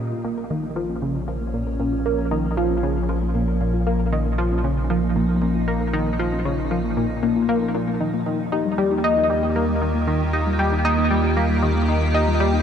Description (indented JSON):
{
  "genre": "ambient, sequencer-driven space music",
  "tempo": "116 BPM",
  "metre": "4/4",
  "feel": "straight",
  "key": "Bb dorian",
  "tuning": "A4 = 440 Hz",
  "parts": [
    { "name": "evolving wavetable pad", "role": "sustained chords", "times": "0.0-12.6 s", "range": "Bb2 to G4", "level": "-25 LUFS", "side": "right 1 dB", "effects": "chorus, built-in reverb, phaser" },
    { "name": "soft round pluck", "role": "arpeggios", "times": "0.0-12.6 s", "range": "G3 to Bb4", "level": "-29 LUFS", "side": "left 3 dB", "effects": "chorus, auto-pan, tape echo" },
    { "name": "tight sequenced synth", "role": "riff", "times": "0.0-12.6 s", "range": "Bb2 to Eb4", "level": "-23 LUFS", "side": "left 1 dB", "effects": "chorus, phaser, tape echo" },
    { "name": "round analog bass", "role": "bass", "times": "0.0-12.6 s", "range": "Bb1 to Eb2", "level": "-25 LUFS", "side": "equal", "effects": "tube saturation" }
  ],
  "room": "moderate huge ambient reverb, RT60 7.2 s",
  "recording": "cassette tape",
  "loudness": "-19 LUFS",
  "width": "side -8 dB against mid",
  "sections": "0.0-12.6 A section",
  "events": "none",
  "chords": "0.0 Bbm; 8.0 Eb"
}